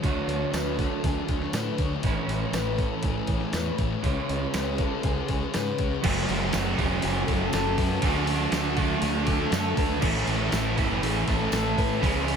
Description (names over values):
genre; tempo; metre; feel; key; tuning
rock, shoegaze and dream pop; 120 BPM; 4/4; straight; A major; A4 = 441 Hz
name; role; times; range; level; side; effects
fingerpicked twelve-string acoustic guitar; arpeggios; 0.0-12.4 s; F#4 to C#5; -33 LUFS; left 3 dB; wide subtle chorus, ping-pong delay
electric guitar through a small old amp; riff; 0.0-12.4 s; F#2 to G#4; -30 LUFS; right 9 dB; reverse reverb
thick fuzz guitar; riff; 0.0-12.4 s; F#2 to D4; -31 LUFS; left 9 dB; distortion, analog chorus
fuzz fingered electric bass; bass; 0.0-12.4 s; E1 to A2; -31 LUFS; equal; overdrive
detuned 8-bit digital drum machine; drums; 0.0-12.4 s; crash cymbal, hi-hat, kick drum, snare drum; -30 LUFS; equal; none
tambourine; percussion; 0.5-11.6 s; none; -43 LUFS; right 11 dB; none
distorted electric guitar; riff; 6.0-12.4 s; F#2 to D4; -29 LUFS; right 1 dB; overdrive
room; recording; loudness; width
moderate huge ambient reverb, RT60 9.1 s; dreamy mix soaked in reverb; -23 LUFS; side -7 dB against mid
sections
0.0-6.0 A section; 6.0-12.4 B section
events
none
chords
0.0 Dmaj7; 2.0 Amaj7; 4.0 C#; 6.0 F#madd9; 8.0 D; 10.0 Amaj7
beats
| 0.04 0.54 1.04 1.54 | 2.04 2.54 3.04 3.54 | 4.04 4.54 5.04 5.54 | 6.04 6.54 7.04 7.54 | 8.04 8.54 9.04 9.54 | 10.03 10.53 11.03 11.53 | 12.03